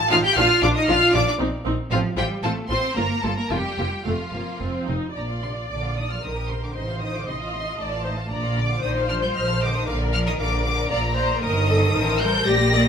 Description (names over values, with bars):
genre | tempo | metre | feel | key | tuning
quick classical-period movement for string orchestra | 115 BPM | 3/4 | rubato | Bb major | A4 = 441 Hz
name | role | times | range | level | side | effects
rich studio violin section | second line | 0.0-12.9 s | D4 to A5 | -28 LUFS | left 1 dB | none
rich studio violin section | melody | 0.1-12.9 s | F5 to Bb6 | -25 LUFS | left 2 dB | none
rich studio viola section | accompaniment | 0.1-12.8 s | A3 to Eb5 | -26 LUFS | left 1 dB | none
rich studio double bass section | bass | 0.1-12.9 s | F1 to Bb1 | -26 LUFS | right 1 dB | none
rich symphonic cello section | bass | 0.1-12.9 s | A2 to G4 | -27 LUFS | right 1 dB | none
room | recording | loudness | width
moderate large studio reverb, RT60 1.3 s | minimal, uncompressed stereo recording | -20 LUFS | side -7 dB against mid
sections
0.0-5.2 A section; 5.2-12.9 B section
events
none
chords
0.4 Bb; 1.4 Cm7/Bb; 1.9 F/A; 3.0 Gm7; 3.5 Bb5/F; 4.6 F5; 5.2 Bb; 6.2 Cm7/Bb; 6.8 F7/A; 8.3 Bb; 9.3 F7/Bb; 11.4 Eb/G